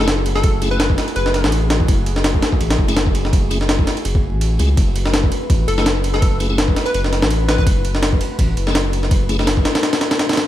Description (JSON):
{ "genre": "drum and bass, jungle", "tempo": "166 BPM", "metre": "4/4", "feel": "swing 55% on 16ths", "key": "F# minor", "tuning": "A4 = 440 Hz", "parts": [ { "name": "plucky unison lead", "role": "melody", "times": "0.0-1.5, 5.7-7.6 s", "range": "A4 to B4", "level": "-24 LUFS", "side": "left 1 dB", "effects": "dub echo" }, { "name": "airy breathy pad", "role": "sustained chords", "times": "0.0-10.5 s", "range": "A3 to B4", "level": "-28 LUFS", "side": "right 1 dB", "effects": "chorus" }, { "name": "tonewheel organ", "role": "stabs", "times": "0.0-9.5 s", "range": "A3 to G#4", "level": "-27 LUFS", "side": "left 2 dB", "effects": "overdrive, chorus vibrato, fast rotary speaker, dub echo" }, { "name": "saturated sub bass", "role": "bass", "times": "0.0-9.6 s", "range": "F#1 to C#2", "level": "-19 LUFS", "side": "equal", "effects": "tube saturation" }, { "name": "jungle sampler-style drum kit", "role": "drums", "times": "0.1-10.5 s", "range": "kick drum, ride cymbal, snare drum", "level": "-17 LUFS", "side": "equal", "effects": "overdrive" } ], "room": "little or no reverb", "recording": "vinyl crackle", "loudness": "-14 LUFS", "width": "side -13 dB against mid", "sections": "0.0-10.5 A section", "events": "none", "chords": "0.0 F#m9" }